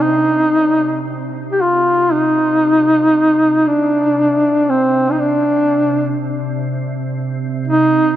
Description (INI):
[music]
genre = caucasian folk, Caucasian lament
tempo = 56-61 BPM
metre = 3/4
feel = rubato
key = C minor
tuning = A4 = 441 Hz
[part]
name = mellow duduk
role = melody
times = 0.0-8.2 s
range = C4 to G4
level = -13 LUFS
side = equal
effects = none
[part]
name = soft additive organ-like pad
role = drone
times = 0.0-8.2 s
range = C3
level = -24 LUFS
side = right 2 dB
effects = ensemble chorus, built-in reverb
[sound]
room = wet cathedral reverb, RT60 5.3 s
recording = none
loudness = -13 LUFS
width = side -12 dB against mid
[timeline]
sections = 0.0-8.2 A section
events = none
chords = none